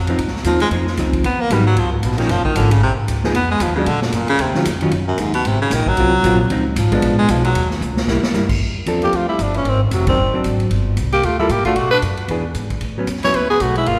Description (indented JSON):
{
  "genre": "jazz, small-group swing and bop",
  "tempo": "228 BPM",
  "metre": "4/4",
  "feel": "swing 59% on 8ths",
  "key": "Db major",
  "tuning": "A4 = 441 Hz",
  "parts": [
    { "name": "upright bass", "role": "bass", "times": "0.0-14.0 s", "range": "F1 to B2", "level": "-22 LUFS", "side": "equal", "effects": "none" },
    { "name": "hollow-body jazz guitar", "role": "accompaniment", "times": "0.1-13.3 s", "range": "Eb3 to A4", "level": "-24 LUFS", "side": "equal", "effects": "none" },
    { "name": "swinging big-band drum kit", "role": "drums", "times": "0.1-13.9 s", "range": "crash cymbal, hi-hat, kick drum, ride cymbal, snare drum", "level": "-28 LUFS", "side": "equal", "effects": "none" },
    { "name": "breathy baritone saxophone", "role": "second line", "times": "0.5-14.0 s", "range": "Gb2 to E4", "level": "-23 LUFS", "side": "equal", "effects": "none" },
    { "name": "growling tenor saxophone", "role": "melody", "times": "9.0-14.0 s", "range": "Eb3 to C#5", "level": "-20 LUFS", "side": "equal", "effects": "none" }
  ],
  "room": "wet concert hall reverb, RT60 2.2 s",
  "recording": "recorded in a church or concert hall",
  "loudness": "-17 LUFS",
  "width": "mono",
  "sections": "0.2-8.6 A section; 8.6-14.0 B section",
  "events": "baritone saxophone solo 0.0-8.6; drum fill 7.8-8.3; band accent 10.1",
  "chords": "0.2 Dbmaj9; 1.2 Abm7; 1.8 Db6; 2.3 Gbmaj7; 3.3 Ebm11; 3.9 Gbaug; 4.4 Ebm9; 5.5 Ab13; 6.5 Dbmaj9; 7.0 Bb7b9; 7.6 Dbsus24; 8.1 C7; 8.6 F6; 9.7 Ab7#11; 10.7 Gm9; 11.8 B5; 12.3 E7; 12.8 A69"
}